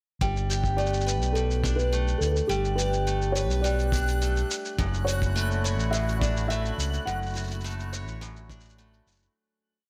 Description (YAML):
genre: folktronica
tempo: 105 BPM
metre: 4/4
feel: straight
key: G lydian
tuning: A4 = 440 Hz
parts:
  - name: picked acoustic archtop guitar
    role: arpeggios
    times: 0.2-9.9 s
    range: F#2 to C#5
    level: -35 LUFS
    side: equal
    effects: tape echo
  - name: overdriven fingered electric bass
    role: bass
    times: 0.2-9.2 s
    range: F#1 to D2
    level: -30 LUFS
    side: equal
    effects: none
  - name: kick drum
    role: drums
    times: 0.2-8.6 s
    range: none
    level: -32 LUFS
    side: equal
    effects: studio reverb
  - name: shaker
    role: drums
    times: 0.2-9.3 s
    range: none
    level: -38 LUFS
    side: equal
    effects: studio reverb
  - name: backwards swelling texture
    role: texture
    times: 0.9-9.4 s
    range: F#6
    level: -41 LUFS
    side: equal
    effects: built-in reverb
  - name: felt-muted upright piano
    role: melody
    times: 0.8-7.6 s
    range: G4 to F#5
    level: -34 LUFS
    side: equal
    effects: tape echo
  - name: accordion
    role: sustained chords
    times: 4.8-9.4 s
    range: D3 to F#4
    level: -41 LUFS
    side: equal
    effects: light tremolo tuning
room: studio reverb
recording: none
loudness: -27 LUFS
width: mono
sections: 0.2-9.4 groove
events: fade-out 6.3-9.4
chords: 0.2 Gadd9; 4.8 Dmaj7/F#